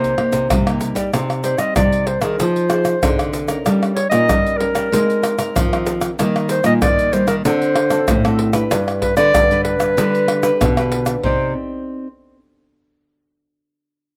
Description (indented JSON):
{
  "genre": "samba and choro",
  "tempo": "95 BPM",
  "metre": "4/4",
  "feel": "straight",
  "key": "C minor",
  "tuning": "A4 = 441 Hz",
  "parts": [
    { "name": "warm clarinet", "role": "melody", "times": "0.0-11.5 s", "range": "Bb4 to Eb5", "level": "-20 LUFS", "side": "equal", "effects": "slapback echo" },
    { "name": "nylon-string guitar", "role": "accompaniment", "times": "0.0-12.1 s", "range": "A2 to D5", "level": "-24 LUFS", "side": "equal", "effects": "none" },
    { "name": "nylon-string guitar", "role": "bass", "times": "0.0-11.5 s", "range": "G2 to Ab3", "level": "-23 LUFS", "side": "equal", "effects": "none" },
    { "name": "egg shaker, surdo, pandeiro and tamborim", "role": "percussion", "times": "0.0-11.4 s", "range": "none", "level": "-23 LUFS", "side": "equal", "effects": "none" }
  ],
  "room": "little or no reverb",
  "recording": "recorded outdoors, with no room sound",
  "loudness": "-17 LUFS",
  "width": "mono",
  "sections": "0.0-1.1 A section; 1.1-11.2 B section; 11.2-13.8 C section",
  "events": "none",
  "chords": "0.0 Cm7; 1.1 Cmadd9; 2.4 Fm7; 3.7 Eb7; 4.9 Abadd9; 6.2 Eb; 7.5 D7; 8.7 G; 11.2 Cmadd9"
}